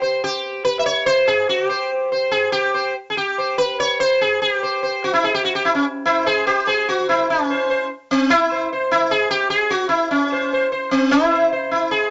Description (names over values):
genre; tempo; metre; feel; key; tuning
indian classical; 146 BPM; 7/4; straight; C raga puriya dhanashri; A4 = 440 Hz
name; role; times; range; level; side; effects
sitar; solo; 0.0-12.1 s; C4 to E5; -19 LUFS; equal; none
room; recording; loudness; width
moderate studio reverb, RT60 0.5 s; nothing above 7.8 kHz; -19 LUFS; mono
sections
0.0-7.3 A section; 7.3-12.1 B section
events
speeding up 0.0-12.1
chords
none